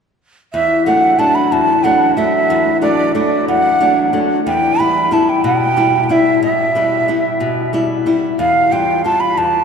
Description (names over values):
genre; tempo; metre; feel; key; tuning
andean folk, Andean ensemble; 61 BPM (dotted quarters); 6/8; straight; unclear; A4 = 440 Hz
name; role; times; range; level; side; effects
breathy mellow quena; melody; 0.5-9.6 s; D5 to B5; -14 LUFS; right 2 dB; none
nylon-string guitar; accompaniment; 0.5-9.6 s; E2 to F4; -16 LUFS; left 2 dB; none
room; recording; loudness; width
wet cathedral reverb, RT60 6.2 s; recorded in a church or concert hall, lossy compression artefacts; -12 LUFS; side -6 dB against mid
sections
0.5-9.6 A section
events
none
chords
0.5 D/E; 4.5 Em; 8.4 G7/E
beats
| 0.53 1.51 | 2.49 3.48 | 4.46 5.44 | 6.42 7.41 | 8.39 9.37